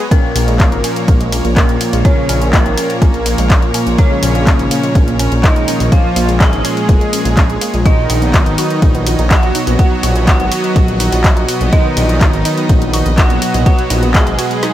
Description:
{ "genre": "melodic techno", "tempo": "124 BPM", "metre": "4/4", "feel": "straight", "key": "Bb phrygian", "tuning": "A4 = 441 Hz", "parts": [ { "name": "rich chamber string section", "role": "sustained chords", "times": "0.0-14.7 s", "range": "Bb3 to D#5", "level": "-26 LUFS", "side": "left 1 dB", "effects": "sidechain pumping" }, { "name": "woody wave-folded pluck", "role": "arpeggios", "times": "0.0-14.7 s", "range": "Ab3 to F#5", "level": "-23 LUFS", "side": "right 1 dB", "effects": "chorus, cassette tape, sidechain pumping, tape echo" }, { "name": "deep house drum kit", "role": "drums", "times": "0.0-14.7 s", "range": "handclaps, hi-hat, ride cymbal, snare drum", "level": "-20 LUFS", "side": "equal", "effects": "none" }, { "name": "soft supersaw", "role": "melody", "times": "0.1-14.7 s", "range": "Bb2 to Ab4", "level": "-19 LUFS", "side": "equal", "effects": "ping-pong delay" }, { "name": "dark detuned synth bell", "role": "second line", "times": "0.1-14.7 s", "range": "Bb4 to Ab5", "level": "-24 LUFS", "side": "right 1 dB", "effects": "chorus, sidechain pumping, tape echo" }, { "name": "electronic kick drum", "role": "drums", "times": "0.1-14.2 s", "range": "none", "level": "-11 LUFS", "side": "equal", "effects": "none" }, { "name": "dark detuned saw bass", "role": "bass", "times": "0.4-14.4 s", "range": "F1 to Bb1", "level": "-16 LUFS", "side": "equal", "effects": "sidechain pumping" }, { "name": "brassy analog pad", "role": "stabs", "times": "0.5-14.7 s", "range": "Bb2 to B3", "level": "-22 LUFS", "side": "right 1 dB", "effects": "chorus, sidechain pumping, tape echo" } ], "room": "digital ambience", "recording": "none", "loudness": "-10 LUFS", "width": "side -13 dB against mid", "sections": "0.0-14.7 A section", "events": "none", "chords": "0.1 Bbm7; 7.9 B" }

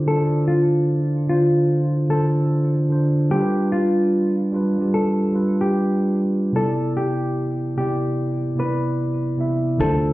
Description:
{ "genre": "lo-fi hip hop", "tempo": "74 BPM", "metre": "4/4", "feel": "swing 66% on 16ths", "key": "unclear", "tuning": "A4 = 440 Hz", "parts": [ { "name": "hollow-body jazz guitar", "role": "melody", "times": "0.0-10.1 s", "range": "F4 to B4", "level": "-24 LUFS", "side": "left 1 dB", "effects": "low-pass filter" }, { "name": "mellow tine electric piano", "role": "accompaniment", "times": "0.0-10.1 s", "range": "C3 to E5", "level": "-19 LUFS", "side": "right 1 dB", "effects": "low-pass filter" }, { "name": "upright bass", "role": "bass", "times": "9.8-10.1 s", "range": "D2", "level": "-25 LUFS", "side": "equal", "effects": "none" }, { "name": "electronic hi-hat", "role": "drums", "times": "9.8-10.0 s", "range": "none", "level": "-45 LUFS", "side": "equal", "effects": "none" } ], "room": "wet studio reverb, RT60 0.5 s", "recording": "heard muffled through a wall, stone room reverb, EQ", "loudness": "-18 LUFS", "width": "side -18 dB against mid", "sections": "0.0-9.8 A section", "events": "kick muted 9.8-10.1", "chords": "0.0 Dm7; 3.3 G7; 6.5 Cmaj9" }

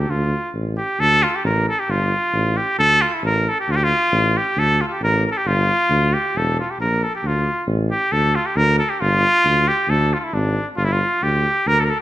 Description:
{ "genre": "balkan folk", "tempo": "135 BPM", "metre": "2/4", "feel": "straight", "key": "D minor", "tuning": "A4 = 438 Hz", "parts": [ { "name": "cornet with straight mute", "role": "melody", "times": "0.0-12.0 s", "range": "D4 to Bb4", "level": "-18 LUFS", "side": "equal", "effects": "none" }, { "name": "mellow tuba", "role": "bass", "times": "0.0-11.9 s", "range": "E1 to D2", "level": "-21 LUFS", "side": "equal", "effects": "none" } ], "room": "moderate recital hall reverb, RT60 1.3 s", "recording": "none", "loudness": "-16 LUFS", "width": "side -14 dB against mid", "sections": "0.0-3.7 A section; 3.7-10.8 A section; 10.8-12.0 B section", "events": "none", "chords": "0.1 Dm; 1.9 Fadd9/G; 2.8 D5; 5.5 G5; 6.3 E(b5, no3); 7.2 Dm; 9.0 G5; 9.9 E7 (rootless); 10.8 G5" }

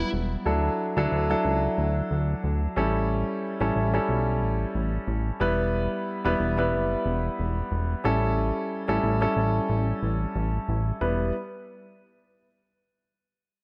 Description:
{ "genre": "1980s-style pop", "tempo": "91 BPM", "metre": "4/4", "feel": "swing 55% on 16ths", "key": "E dorian", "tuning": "A4 = 440 Hz", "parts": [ { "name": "warm baby grand piano", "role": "accompaniment", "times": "0.0-11.3 s", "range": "F#3 to B4", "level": "-29 LUFS", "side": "equal", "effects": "none" }, { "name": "fat analog bass", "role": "bass", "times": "0.0-11.3 s", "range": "E1 to D2", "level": "-29 LUFS", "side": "equal", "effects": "none" } ], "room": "light reverb, small room ambience", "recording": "none", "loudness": "-26 LUFS", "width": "mono", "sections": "0.5-11.0 A section; 11.0-13.6 B section", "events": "none", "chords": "0.5 Dadd9; 2.8 A7; 5.4 Em; 8.0 A7; 11.0 Em" }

